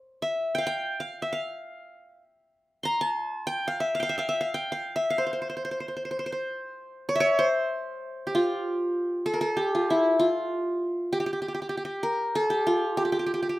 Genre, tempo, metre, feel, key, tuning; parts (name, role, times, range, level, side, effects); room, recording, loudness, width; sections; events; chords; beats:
turkish; 192 BPM (eighths); 9/8; straight; A4 = 441 Hz
qanun; solo; 0.2-13.6 s; E4 to C6; -25 LUFS; equal
moderate studio reverb, RT60 0.6 s; rough home demo mix; -25 LUFS; side -17 dB against mid
0.0-8.3 A section; 8.3-13.6 B section
0.22 0.53 0.84 1.15 1.46 1.77 2.08 2.40 | 2.71 3.02 3.33 3.64 3.96 4.27 4.58 4.89 5.20 | 5.51 5.83 6.14 6.45 6.76 7.08 7.39 7.70 8.01 | 8.32 8.64 8.95 9.26 9.57 9.89 10.20 10.51 10.82 | 11.13 11.45 11.76 12.07 12.38 12.70 13.01 13.32